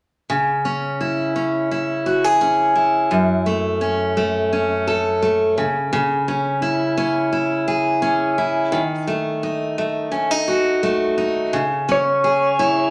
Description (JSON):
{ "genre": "pop", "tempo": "86 BPM", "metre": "4/4", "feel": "straight", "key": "C# minor", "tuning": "A4 = 440 Hz", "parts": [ { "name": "picked steel-string acoustic guitar", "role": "accompaniment", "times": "0.3-12.9 s", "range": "F#2 to A4", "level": "-20 LUFS", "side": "equal", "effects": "none" }, { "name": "electric slide guitar", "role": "melody", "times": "11.9-12.9 s", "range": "C#5", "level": "-20 LUFS", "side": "equal", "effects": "none" } ], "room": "wet large studio reverb, RT60 1.1 s", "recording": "none", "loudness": "-20 LUFS", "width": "mono", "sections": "0.3-11.5 A section; 11.5-12.9 B section", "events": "none", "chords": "0.3 C#m; 3.1 F#m; 5.6 C#m; 8.7 D#dim; 11.5 C#m" }